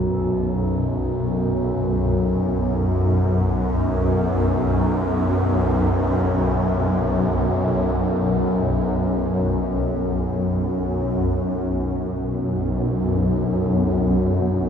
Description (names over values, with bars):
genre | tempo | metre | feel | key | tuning
dark ambient drone | free time | none | none | B minor | A4 = 438 Hz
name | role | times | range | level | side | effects
bronze singing bowl | arpeggios | 0.0-3.2 s | F#3 to F#4 | -31 LUFS | right 1 dB | none
swarming drone | drone | 0.0-14.7 s | B1 to F#2 | -19 LUFS | equal | built-in reverb
granular cloud pad | sustained chords | 13.8-14.7 s | B3 to F#4 | -36 LUFS | left 2 dB | none
room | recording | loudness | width
wet cathedral reverb, RT60 7.1 s | none | -19 LUFS | side -7 dB against mid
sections
0.0-11.3 A section; 11.3-14.7 B section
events
none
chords
0.0 B5; 11.3 Bm